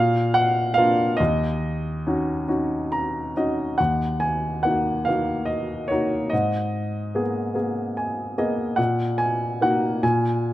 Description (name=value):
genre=classical, lyrical solo piano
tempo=48 BPM (dotted quarters)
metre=6/8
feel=rubato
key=Eb minor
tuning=A4 = 441 Hz
part: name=warm baby grand piano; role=solo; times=0.0-10.5 s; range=Eb2 to Bb5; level=-21 LUFS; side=equal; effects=none
room=light reverb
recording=close, detailed microphones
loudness=-21 LUFS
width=side -14 dB against mid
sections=0.0-3.8 A section; 3.8-10.5 A section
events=grand piano fill 2.5-3.8, 7.6-8.8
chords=0.0 Bb; 1.2 Ebm7; 3.8 Ebm; 6.3 Abmadd9; 8.8 Ebm/Bb; 10.0 N.C.